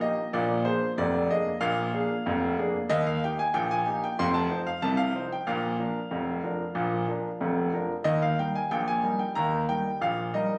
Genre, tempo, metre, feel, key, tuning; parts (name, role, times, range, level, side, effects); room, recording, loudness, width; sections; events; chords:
ragtime piano; 93 BPM; 2/4; straight; Eb major; A4 = 440 Hz
warm concert grand piano; solo; 0.0-10.6 s; F1 to C6; -28 LUFS; equal
light reverb; recorded on a phone in the room, club reverb, compression; -28 LUFS; mono
0.0-10.6 A section
0.3 Bb7; 2.9 Eb; 4.2 F5; 5.5 Bb; 8.1 Eb